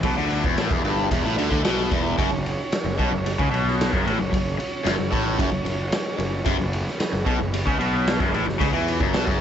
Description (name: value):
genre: psychedelic rock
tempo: 112 BPM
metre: 4/4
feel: straight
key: unclear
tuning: A4 = 444 Hz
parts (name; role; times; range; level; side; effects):
- combo organ; sustained chords; 0.0-9.4 s; F#3 to C#5; -32 LUFS; right 5 dB; none
- cranked stack guitar; riff; 0.0-9.4 s; E2 to E3; -24 LUFS; left 1 dB; overdrive, phaser
- fuzz picked electric bass; bass; 0.0-9.4 s; E1 to E2; -27 LUFS; equal; overdrive
- raw garage drum kit; drums; 0.0-9.4 s; kick drum, ride cymbal, snare drum; -25 LUFS; equal; tape echo
room: light reverb, small room ambience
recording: echo-heavy mix, nothing above 8.0 kHz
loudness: -20 LUFS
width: side -9 dB against mid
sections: 0.0-9.4 A section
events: none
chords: 0.0 Em; 2.2 F#5